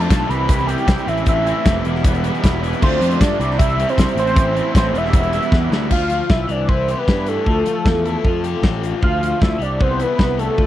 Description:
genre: indie rock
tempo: 155 BPM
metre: 4/4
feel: straight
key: D dorian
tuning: A4 = 440 Hz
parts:
  - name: fat analog lead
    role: melody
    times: 0.0-10.7 s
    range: A4 to B5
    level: -21 LUFS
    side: right 1 dB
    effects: tape echo
  - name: crunchy overdriven guitar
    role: riff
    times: 0.0-5.9 s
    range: E2 to F4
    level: -24 LUFS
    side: right 10 dB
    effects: analog chorus
  - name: raw garage guitar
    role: riff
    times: 0.0-10.7 s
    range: E3 to A4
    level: -25 LUFS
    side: left 10 dB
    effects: overdrive
  - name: fuzz picked electric bass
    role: bass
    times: 0.0-10.7 s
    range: E1 to G2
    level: -22 LUFS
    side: equal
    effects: overdrive
  - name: big rock drum kit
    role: drums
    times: 0.0-10.7 s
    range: crash cymbal, hi-hat, kick drum, snare drum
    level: -17 LUFS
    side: equal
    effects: none
room: little or no reverb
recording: dry, close 1970s-style studio recording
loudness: -15 LUFS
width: side -13 dB against mid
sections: 0.0-5.9 A section; 5.9-10.7 B section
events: drum fill 5.5-5.9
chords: 0.3 Cmaj7; 1.1 Am; 1.9 Em; 2.8 Dm; 3.4 C; 4.2 Am; 4.9 Em; 5.9 Dm; 6.5 C; 7.5 Dmadd9; 8.2 Fadd9; 9.0 Dm; 9.6 Cmaj7

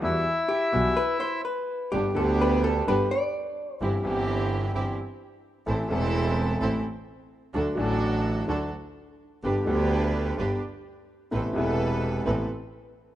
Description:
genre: tango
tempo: 128 BPM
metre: 4/4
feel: rubato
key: G major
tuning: A4 = 441 Hz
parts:
  - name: bandoneon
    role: melody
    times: 0.0-1.4 s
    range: E4 to E5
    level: -26 LUFS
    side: left 2 dB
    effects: none
  - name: clear concert grand piano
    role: accompaniment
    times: 0.0-12.5 s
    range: E1 to A4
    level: -28 LUFS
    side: left 1 dB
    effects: none
  - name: clear double bass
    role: bass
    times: 0.0-12.5 s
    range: E1 to E2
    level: -29 LUFS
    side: right 1 dB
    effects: none
  - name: hollow-body jazz guitar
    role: second line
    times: 0.5-4.0 s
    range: G4 to D5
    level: -28 LUFS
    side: left 1 dB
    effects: none
  - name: rich chamber string section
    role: stabs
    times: 1.9-12.5 s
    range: B3 to B4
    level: -31 LUFS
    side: right 4 dB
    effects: slapback echo
room: light reverb, studio ambience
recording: rough home demo mix, nothing above 10.4 kHz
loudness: -24 LUFS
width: side -13 dB against mid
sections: 0.0-1.9 A section; 1.9-13.2 B section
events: none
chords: 0.0 Emadd9; 1.9 G; 3.8 C/G; 5.7 Am; 7.5 D; 9.4 G; 11.3 Amadd9

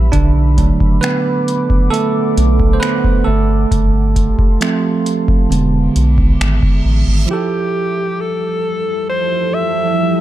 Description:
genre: contemporary R&B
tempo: 67 BPM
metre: 4/4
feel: straight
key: unclear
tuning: A4 = 440 Hz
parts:
  - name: bell-like tine electric piano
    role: accompaniment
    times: 0.0-10.2 s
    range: D3 to C5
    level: -17 LUFS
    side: right 4 dB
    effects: wide subtle chorus
  - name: deep dark ambient pad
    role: sustained chords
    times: 0.0-10.2 s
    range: F3 to E6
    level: -24 LUFS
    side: equal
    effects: chorus, built-in reverb
  - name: round analog bass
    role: bass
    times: 0.0-7.3 s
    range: E1 to B1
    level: -14 LUFS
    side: equal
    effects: none
  - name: booming analog drum machine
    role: drums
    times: 0.1-6.8 s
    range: finger snaps, hi-hat, kick drum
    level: -15 LUFS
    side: equal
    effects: overdrive
  - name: reverse cymbal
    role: sound effects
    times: 6.1-7.3 s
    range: none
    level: -29 LUFS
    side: right 4 dB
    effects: none
  - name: breathy alto saxophone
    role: melody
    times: 7.3-10.2 s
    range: G4 to E5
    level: -18 LUFS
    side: left 2 dB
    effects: ping-pong delay
room: digital ambience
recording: dark, warm production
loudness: -12 LUFS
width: side -13 dB against mid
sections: 0.0-7.3 A section; 7.3-10.2 B section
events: tine electric piano solo 0.0-7.3; reverse cymbal 6.1-7.3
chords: 0.1 Bm7; 3.3 G9sus4; 5.5 E7; 7.3 Fmaj9

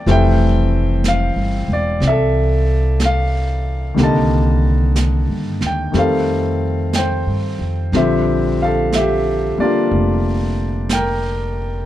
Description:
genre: jazz ballad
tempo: 61 BPM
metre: 4/4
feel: swing 67% on 8ths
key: unclear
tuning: A4 = 440 Hz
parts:
  - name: clear grand piano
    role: accompaniment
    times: 0.0-11.9 s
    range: D3 to A5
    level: -18 LUFS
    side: left 1 dB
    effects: none
  - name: upright bass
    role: bass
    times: 0.1-11.8 s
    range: E1 to G2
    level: -18 LUFS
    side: equal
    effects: none
  - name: jazz brush drum kit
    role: drums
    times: 0.1-11.9 s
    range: brushed snare drum, hi-hat, snare drum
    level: -26 LUFS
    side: right 2 dB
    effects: none
room: light reverb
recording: dark, warm production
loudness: -15 LUFS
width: side -13 dB against mid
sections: 0.0-7.9 A section; 7.9-11.9 B section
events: none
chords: 0.1 Fmaj9; 4.0 Cm7; 5.9 F9; 7.9 Bb6

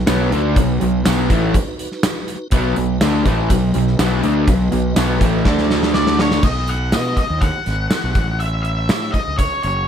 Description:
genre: classic rock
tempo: 122 BPM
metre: 4/4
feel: straight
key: B mixolydian from 6.4 s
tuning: A4 = 442 Hz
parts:
  - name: tonewheel organ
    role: sustained chords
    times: 0.0-6.4 s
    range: D4 to D#5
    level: -31 LUFS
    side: right 1 dB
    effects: slow rotary speaker, chorus vibrato
  - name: crunchy overdriven guitar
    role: riff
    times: 0.0-6.4 s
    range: A2 to D4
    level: -21 LUFS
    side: left 11 dB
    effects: none
  - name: distorted electric guitar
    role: riff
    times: 0.0-6.4 s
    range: A2 to D4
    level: -22 LUFS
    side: right 12 dB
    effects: distortion
  - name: fuzz guitar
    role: riff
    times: 0.0-6.4 s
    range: A2 to D4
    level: -22 LUFS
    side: equal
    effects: distortion
  - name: fuzz fingered electric bass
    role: bass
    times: 0.0-9.8 s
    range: F#1 to B2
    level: -21 LUFS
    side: equal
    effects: overdrive
  - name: gated 80s drum kit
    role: drums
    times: 0.1-9.7 s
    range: crash cymbal, hi-hat, kick drum, snare drum, tambourine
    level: -19 LUFS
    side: equal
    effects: none
  - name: octave-fuzz lead guitar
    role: melody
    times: 5.9-9.9 s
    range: C#5 to F#5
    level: -22 LUFS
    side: left 1 dB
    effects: distortion, slapback echo
room: little or no reverb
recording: none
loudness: -15 LUFS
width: side -8 dB against mid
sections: 0.0-6.4 A section; 6.4-9.9 B section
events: drum fill 5.5-6.4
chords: 0.0 B; 5.5 D5; 6.4 B; 8.2 A

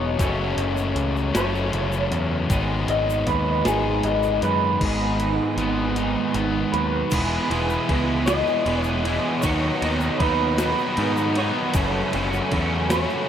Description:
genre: indie rock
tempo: 52 BPM (dotted quarters)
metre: 6/8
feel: straight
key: unclear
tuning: A4 = 440 Hz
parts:
  - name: electric guitar through a small old amp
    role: melody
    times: 0.0-13.3 s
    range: G#4 to D#5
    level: -26 LUFS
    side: right 1 dB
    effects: wide subtle chorus, diffuse ambient delay
  - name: cranked stack guitar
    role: riff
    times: 0.0-13.3 s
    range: F#2 to E4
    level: -26 LUFS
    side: left 5 dB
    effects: overdrive
  - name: cranked stack guitar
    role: riff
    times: 0.0-13.3 s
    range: E2 to A4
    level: -27 LUFS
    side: right 5 dB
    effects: overdrive, ensemble chorus, diffuse ambient delay
  - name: growling picked electric bass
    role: bass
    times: 0.0-13.0 s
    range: E1 to G#2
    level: -26 LUFS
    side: equal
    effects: overdrive
  - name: gated 80s digital drum machine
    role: drums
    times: 0.2-13.1 s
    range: crash cymbal, hi-hat, kick drum, ride cymbal, snare drum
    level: -29 LUFS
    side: equal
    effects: gated reverb, gated reverb snare
  - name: egg shaker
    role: percussion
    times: 0.2-13.2 s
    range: none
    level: -42 LUFS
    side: left 11 dB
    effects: none
room: wet huge ambient reverb, RT60 8.2 s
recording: dreamy mix soaked in reverb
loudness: -20 LUFS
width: side -9 dB against mid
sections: 0.0-4.8 A section; 4.8-7.1 B section; 7.1-13.3 C section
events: clean electric guitar solo 0.0-4.8; kick and snare drop out 6.0-7.1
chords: 0.2 F#m7; 2.5 G#m7; 7.1 E; 9.4 Badd9/D#; 11.7 F#m

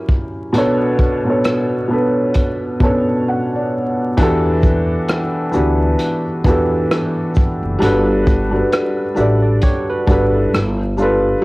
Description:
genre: lo-fi hip hop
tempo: 66 BPM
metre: 4/4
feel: swing 58% on 16ths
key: E dorian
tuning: A4 = 438 Hz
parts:
  - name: felt-muted upright piano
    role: accompaniment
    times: 0.0-11.4 s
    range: B2 to A5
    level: -16 LUFS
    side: equal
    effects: low-pass filter, cassette tape
  - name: crunchy breakbeat drum kit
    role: drums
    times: 0.1-11.2 s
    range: hi-hat, kick drum, rim click, shaker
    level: -18 LUFS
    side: equal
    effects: cassette tape
  - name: upright bass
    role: bass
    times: 4.2-11.3 s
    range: F#1 to E2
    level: -19 LUFS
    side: equal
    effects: none
  - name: barky tine electric piano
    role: second line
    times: 9.2-10.8 s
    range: E4 to E5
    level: -24 LUFS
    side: right 3 dB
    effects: low-pass filter, cassette tape, analog delay
room: light reverb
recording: home recording on cassette, vinyl crackle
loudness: -14 LUFS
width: side -21 dB against mid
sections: 0.0-4.2 A section; 4.2-11.4 B section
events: filter sweep on felt piano 0.0-4.2; felt piano fill 2.4-4.2; break 3.3-4.2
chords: 0.0 F#7b9; 0.5 Bm9; 4.2 Em11; 7.8 Gmaj9; 10.5 G9

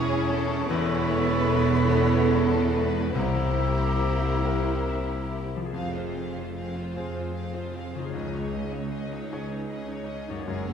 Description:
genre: cinematic, emotional film score for orchestra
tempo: 45-52 BPM (dotted quarters)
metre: 6/8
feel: rubato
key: Db major from 5.7 s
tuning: A4 = 443 Hz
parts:
  - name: rich symphonic violin section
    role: melody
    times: 0.0-10.7 s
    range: G#4 to F5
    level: -36 LUFS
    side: left 3 dB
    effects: none
  - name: bright symphonic violin section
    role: second line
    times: 0.0-10.7 s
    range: Db4 to Ab4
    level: -40 LUFS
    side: left 2 dB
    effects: none
  - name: clear clarinet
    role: second line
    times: 0.0-5.4 s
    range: G4 to A4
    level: -36 LUFS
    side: left 2 dB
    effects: none
  - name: flute section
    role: second line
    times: 0.0-5.4 s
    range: Bb5 to C#6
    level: -35 LUFS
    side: equal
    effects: none
  - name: warm cor anglais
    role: second line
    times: 0.0-5.4 s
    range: C#5 to E5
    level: -34 LUFS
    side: right 1 dB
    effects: none
  - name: bright grand piano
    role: accompaniment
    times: 0.0-10.7 s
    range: E1 to C#5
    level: -33 LUFS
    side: left 2 dB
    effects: none
  - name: bright symphonic viola section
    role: accompaniment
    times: 0.0-10.7 s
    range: Ab3 to F4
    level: -33 LUFS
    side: right 3 dB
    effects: none
  - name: mellow French horn section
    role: sustained chords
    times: 0.0-5.4 s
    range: Bb3 to A4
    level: -30 LUFS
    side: left 3 dB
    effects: none
  - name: concert harp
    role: arpeggios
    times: 0.0-10.7 s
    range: E2 to E5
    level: -34 LUFS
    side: left 4 dB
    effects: none
  - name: clear symphonic double bass section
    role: bass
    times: 0.0-10.7 s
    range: E1 to Db2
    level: -32 LUFS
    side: right 3 dB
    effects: none
  - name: rich symphonic cello section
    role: bass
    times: 0.0-10.7 s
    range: C2 to Gb2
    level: -32 LUFS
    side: right 2 dB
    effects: none
room: wet scoring stage reverb, RT60 1.6 s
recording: heard from further back in the room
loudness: -24 LUFS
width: side -7 dB against mid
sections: 0.0-5.7 A section; 5.7-10.7 B section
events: none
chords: 0.0 C#m/E; 0.7 Aadd9/E; 3.1 C7; 5.7 Fm; 8.1 Dbsus2

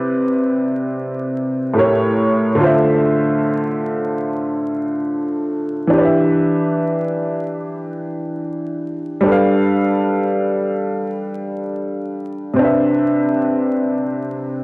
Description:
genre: hip hop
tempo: free time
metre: none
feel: none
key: D dorian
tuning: A4 = 441 Hz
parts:
  - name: warm upright piano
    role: solo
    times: 0.0-14.6 s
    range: A2 to F5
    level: -16 LUFS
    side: equal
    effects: cassette tape, low-pass filter
room: moderate spring reverb, RT60 1.2 s, studio reverb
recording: home recording on cassette, vinyl crackle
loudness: -16 LUFS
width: side -25 dB against mid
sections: 0.0-14.6 A section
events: none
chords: 0.0 Cmaj9; 1.8 A7b9; 2.6 Dm9; 5.9 Em7; 9.3 G9; 12.6 Cmaj9

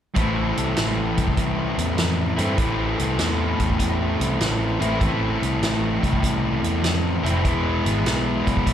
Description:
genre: blues rock power trio and southern rock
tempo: 99 BPM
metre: 4/4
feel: swing 68% on 8ths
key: A minor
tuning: A4 = 439 Hz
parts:
  - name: fuzz guitar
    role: riff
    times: 0.1-8.7 s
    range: A2 to E4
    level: -22 LUFS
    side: left 1 dB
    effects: distortion, slapback echo
  - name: vintage muted picked electric bass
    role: bass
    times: 0.2-8.7 s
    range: E1 to G2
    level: -25 LUFS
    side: equal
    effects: none
  - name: vintage drum kit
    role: drums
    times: 0.2-8.7 s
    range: hi-hat, kick drum, snare drum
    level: -26 LUFS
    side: equal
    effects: none
room: light reverb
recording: live gig heard through the venue's PA, club reverb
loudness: -20 LUFS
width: side -10 dB against mid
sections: 0.2-8.7 A section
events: none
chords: 0.2 Am; 7.4 E

